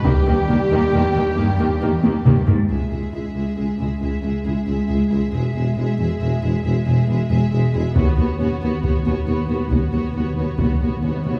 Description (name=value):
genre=cinematic, epic orchestral film score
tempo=91 BPM (dotted quarters)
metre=12/8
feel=straight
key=unclear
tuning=A4 = 440 Hz
part: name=rich symphonic violin section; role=melody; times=0.0-11.4 s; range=G4 to E5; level=-38 LUFS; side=equal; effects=none
part: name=warm symphonic violin section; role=second line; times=0.0-11.4 s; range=F#4 to G#4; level=-35 LUFS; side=equal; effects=none
part: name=rich symphonic viola section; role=accompaniment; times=0.0-11.4 s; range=D#3 to B3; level=-28 LUFS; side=equal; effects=none
part: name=bright trombone section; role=sustained chords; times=0.0-2.4 s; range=G2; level=-32 LUFS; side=equal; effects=none
part: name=warm French horn section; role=sustained chords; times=0.0-11.1 s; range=G3 to E4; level=-33 LUFS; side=equal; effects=none
part: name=clear trumpet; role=stabs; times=0.0-2.4 s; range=G4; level=-28 LUFS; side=equal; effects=none
part: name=warm symphonic cello section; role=bass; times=0.0-11.3 s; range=C#2 to G#2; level=-27 LUFS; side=equal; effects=none
part: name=taiko ensemble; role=drums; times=0.0-3.5, 8.0-11.0 s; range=none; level=-23 LUFS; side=equal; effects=none
part: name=dark studio double bass section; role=bass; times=0.1-11.3 s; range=E1 to D#2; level=-26 LUFS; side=equal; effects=none
part: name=mellow tuba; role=bass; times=0.1-11.3 s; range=E1 to D#2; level=-27 LUFS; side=equal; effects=none
part: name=timpani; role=percussion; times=8.0-11.4 s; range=D#3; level=-30 LUFS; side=equal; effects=none
part: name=cymbal swell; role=sound effects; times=11.0-11.4 s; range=none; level=-42 LUFS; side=equal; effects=none
room=moderate scoring stage reverb, RT60 2.0 s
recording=small room reverb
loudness=-20 LUFS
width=mono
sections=0.0-2.7 A section; 2.7-11.4 B section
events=drum fill 2.0-2.7; timpani fill 8.0-11.4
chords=0.1 D#; 2.7 C#m; 5.3 E; 8.0 Badd9/D#